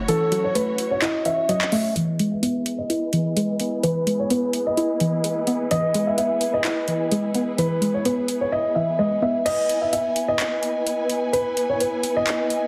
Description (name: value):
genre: hip hop, trap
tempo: 128 BPM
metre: 4/4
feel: half-time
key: E major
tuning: A4 = 440 Hz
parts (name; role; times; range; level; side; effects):
- dark concert grand piano; melody; 0.0-12.7 s; A4 to E5; -26 LUFS; equal; low-pass filter, slapback echo
- soft round pluck; accompaniment; 0.0-9.5 s; E3 to E4; -26 LUFS; equal; chorus, low-pass filter
- dark studio string section; sustained chords; 0.0-12.7 s; B3 to G#5; -31 LUFS; equal; low-pass filter
- trap drum kit; drums; 0.1-12.6 s; crash cymbal, handclaps, hi-hat; -30 LUFS; equal; overdrive
room: moderate plate reverb, RT60 1.4 s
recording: heavily compressed radio sound, multiband compression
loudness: -22 LUFS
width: mono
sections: 0.0-2.0 A section; 2.0-9.5 B section; 9.5-12.7 C section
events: break 0.1-2.0; filter sweep 2.0-9.5; kick muted 9.5-12.7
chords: 0.0 F#m7; 2.0 Emaj7